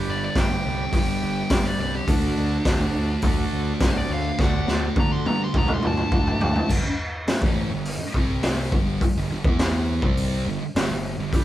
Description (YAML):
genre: garage rock duo or trio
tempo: 104 BPM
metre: 4/4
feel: straight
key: G major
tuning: A4 = 439 Hz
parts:
  - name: overdriven combo organ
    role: sustained chords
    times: 0.0-6.6, 11.3-11.4 s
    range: F#4 to D5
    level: -33 LUFS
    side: right 1 dB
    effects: none
  - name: thick fuzz guitar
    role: riff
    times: 0.0-11.4 s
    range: G2 to E4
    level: -26 LUFS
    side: right 1 dB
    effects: distortion
  - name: fuzz lead guitar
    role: melody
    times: 0.1-6.7 s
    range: D4 to C6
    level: -29 LUFS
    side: left 1 dB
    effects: distortion
  - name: fuzz picked electric bass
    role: bass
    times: 0.1-11.4 s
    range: G1 to D3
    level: -28 LUFS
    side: equal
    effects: overdrive
  - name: raw garage drum kit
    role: drums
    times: 0.4-11.4 s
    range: crash cymbal, hi-hat, kick drum, snare drum, toms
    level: -23 LUFS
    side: equal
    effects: none
room: light reverb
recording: band playing live in one room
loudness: -20 LUFS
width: side -13 dB against mid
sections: 0.0-6.7 A section; 6.7-11.4 B section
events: drum fill 4.4-6.7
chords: 0.0 G; 2.1 D; 6.7 G5; 8.1 C5; 8.7 G5; 9.4 E5; 10.0 G5